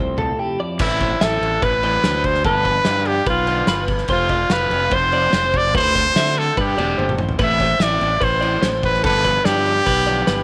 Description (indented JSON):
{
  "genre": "math rock and midwest emo",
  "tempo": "146 BPM",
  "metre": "4/4",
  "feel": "straight",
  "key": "unclear",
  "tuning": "A4 = 441 Hz",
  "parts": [
    { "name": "twelve-string electric guitar", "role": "accompaniment", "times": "0.0-2.2 s", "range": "F2 to E4", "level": "-34 LUFS", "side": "equal", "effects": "none" },
    { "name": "twelve-string electric guitar", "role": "arpeggios", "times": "0.0-10.4 s", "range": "G4 to F5", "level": "-26 LUFS", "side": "equal", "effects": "none" },
    { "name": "fuzz fingered electric bass", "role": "bass", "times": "0.0-10.4 s", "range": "E1 to D3", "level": "-26 LUFS", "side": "equal", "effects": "overdrive" },
    { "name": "loose indie drum kit", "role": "drums", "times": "0.2-10.4 s", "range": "crash cymbal, kick drum, snare drum, toms", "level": "-26 LUFS", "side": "equal", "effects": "none" },
    { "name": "bright trumpet", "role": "melody", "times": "0.8-10.4 s", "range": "E4 to E5", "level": "-21 LUFS", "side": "equal", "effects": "tape echo" },
    { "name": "crunchy overdriven guitar", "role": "riff", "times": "0.8-10.3 s", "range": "D3 to F#4", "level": "-31 LUFS", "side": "equal", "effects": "phaser" }
  ],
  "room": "light reverb, studio reverb",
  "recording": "none",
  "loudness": "-18 LUFS",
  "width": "mono",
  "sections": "0.8-10.4 A section",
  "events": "drum fill 7.0-7.4",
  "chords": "0.0 Fmaj7; 0.8 Amadd9; 2.4 G9; 4.1 F6; 5.7 D9sus4; 7.4 Amadd9; 9.0 G9",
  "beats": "0.39 | 0.80 1.21 1.62 2.03 | 2.44 2.86 3.27 3.68 | 4.09 4.50 4.92 5.33 | 5.74 6.15 6.57 6.98 | 7.39 7.80 8.22 8.63 | 9.04 9.45 9.87 10.28"
}